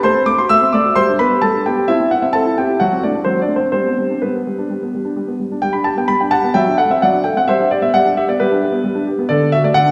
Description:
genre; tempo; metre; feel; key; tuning
classical-period piano sonatina; 130 BPM; 4/4; straight; G major; A4 = 440 Hz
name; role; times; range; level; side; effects
warm grand piano; solo; 0.0-9.9 s; D3 to E6; -16 LUFS; equal; none
room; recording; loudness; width
wet church reverb, RT60 2.8 s; recorded in a church or concert hall; -16 LUFS; mono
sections
0.0-5.6 A section; 5.6-9.9 A section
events
none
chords
0.1 F#dim/A; 1.0 G; 1.9 C; 2.8 D7/F#; 3.7 G; 6.5 D7/F#; 7.5 G; 9.3 D

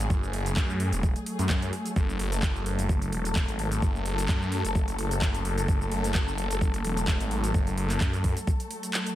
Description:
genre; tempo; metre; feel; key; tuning
bass house; 129 BPM; 4/4; swing 54% on 16ths; F# minor; A4 = 445 Hz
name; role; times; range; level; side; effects
muted studio string section; sustained chords; 0.0-9.2 s; F#3 to A4; -33 LUFS; left 2 dB; sidechain pumping
phased detuned saw bass; bass; 0.0-8.3 s; E1 to F#2; -28 LUFS; equal; phaser, sidechain pumping
garage drum kit; drums; 0.0-9.2 s; handclaps, hi-hat, shaker; -34 LUFS; right 1 dB; overdrive, studio ambience
electronic kick drum; drums; 0.1-8.6 s; none; -26 LUFS; equal; overdrive, studio ambience
room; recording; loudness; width
little or no reverb; none; -25 LUFS; side -13 dB against mid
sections
0.0-9.2 A section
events
none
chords
0.0 F#madd9

